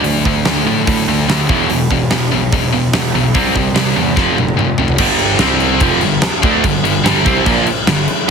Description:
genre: hard rock.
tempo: 146 BPM.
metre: 4/4.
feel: straight.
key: G mixolydian.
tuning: A4 = 440 Hz.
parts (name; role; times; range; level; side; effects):
overdriven semi-hollow guitar; riff; 0.0-8.3 s; E2 to D4; -18 LUFS; right 12 dB; none.
scooped high-gain guitar; riff; 0.0-8.0 s; E2 to D4; -17 LUFS; left 10 dB; distortion.
fuzz picked electric bass; bass; 0.0-8.1 s; E1 to A2; -20 LUFS; equal; overdrive.
huge arena drum kit; drums; 0.0-8.2 s; crash cymbal, hi-hat, kick drum, snare drum, toms; -16 LUFS; equal; none.
room: light reverb, small room ambience.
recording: heavily compressed radio sound, multiband compression.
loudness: -11 LUFS.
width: side -6 dB against mid.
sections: 0.0-5.0 A section; 5.0-8.3 B section.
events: drum fill 4.2-5.0.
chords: 0.0 D5; 1.5 E5; 3.3 C; 4.2 F5; 5.0 G5; 5.4 C5; 5.8 G5.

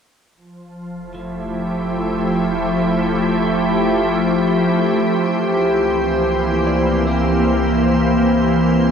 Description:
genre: ambient.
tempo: 76 BPM.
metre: 3/4.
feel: straight.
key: unclear.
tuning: A4 = 442 Hz.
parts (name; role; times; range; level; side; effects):
round analog bass; bass; 0.3-8.9 s; F1 to C2; -28 LUFS; right 1 dB; none.
soft additive organ-like pad; sustained chords; 0.8-8.9 s; E3 to C5; -16 LUFS; equal; ensemble chorus, built-in reverb.
clean electric guitar; arpeggios; 1.1-8.9 s; F3 to D5; -34 LUFS; equal; none.
room: wet huge ambient reverb, RT60 7.3 s.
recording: dark, warm production.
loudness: -15 LUFS.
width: side -7 dB against mid.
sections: 0.4-8.9 A section.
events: fade-in on analog synth bass 0.4-8.9.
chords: 0.4 Fmaj9; 5.1 C7.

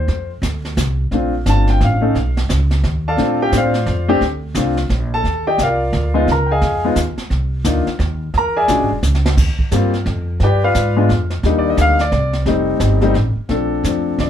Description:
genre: jazz piano trio.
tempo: 174 BPM.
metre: 3/4.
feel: swing 62% on 8ths.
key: Bb major.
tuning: A4 = 443 Hz.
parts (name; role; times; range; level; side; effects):
warm concert grand piano; melody; 0.0-14.3 s; F3 to Bb5; -17 LUFS; left 2 dB; none.
upright bass; bass; 0.0-14.3 s; E1 to Bb2; -18 LUFS; right 1 dB; none.
jazz brush drum kit; drums; 0.1-14.3 s; brushed snare drum, crash cymbal, hi-hat, kick drum, snare drum; -22 LUFS; right 1 dB; none.
room: wet small room reverb, RT60 0.5 s.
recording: heard from further back in the room.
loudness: -14 LUFS.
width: side -10 dB against mid.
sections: 0.0-5.3 A section; 5.3-13.5 A section.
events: grand piano solo 0.0-13.5; drum fill 9.0-9.4.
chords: 0.1 F5; 1.1 Bbmaj9; 2.2 B9; 3.2 Bbmaj9; 5.3 Ebmaj9; 6.3 Dbadd9; 7.3 Cmadd9; 8.3 E13; 9.4 Ebadd9; 10.4 G7b9; 11.4 Cm9; 12.5 F9; 13.5 Bbmaj9.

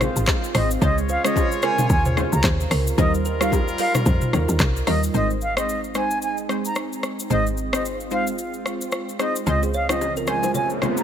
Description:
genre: afrobeats.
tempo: 111 BPM.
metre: 4/4.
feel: swing 58% on 16ths.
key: Ab major.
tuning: A4 = 439 Hz.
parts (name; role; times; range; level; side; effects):
clear horn section; second line; 0.0-4.8 s; G3 to Db5; -31 LUFS; left 3 dB; tape echo.
lush unison pad; sustained chords; 0.0-11.0 s; C3 to F4; -31 LUFS; right 2 dB; chorus.
kalimba; riff; 0.0-5.0, 9.6-10.7 s; G4 to Eb5; -30 LUFS; right 5 dB; tape echo.
woody log drum bass; bass; 0.0-11.0 s; Ab1 to F2; -23 LUFS; equal; none.
afro-pop drum kit; drums; 0.0-11.0 s; handclaps, hi-hat, kick drum, rim click, shaker, toms; -24 LUFS; equal; none.
bongos and congas; percussion; 0.0-4.7, 9.5-11.0 s; none; -29 LUFS; left 8 dB; none.
analog pluck; accompaniment; 0.5-11.0 s; G3 to C5; -27 LUFS; right 1 dB; chorus.
bright reedy concert flute; melody; 0.6-11.0 s; Eb5 to Bb5; -26 LUFS; right 1 dB; tape echo.
riser; sound effects; 10.0-11.0 s; none; -29 LUFS; equal; none.
room: light reverb, small room ambience.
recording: none.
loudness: -19 LUFS.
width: side -9 dB against mid.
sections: 0.0-5.1 A section; 5.1-11.0 B section.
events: riser 10.0-11.0.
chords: 0.0 Ab; 0.8 Dbmaj7; 3.0 Ebadd9; 5.1 Ab; 9.5 Dbmaj7.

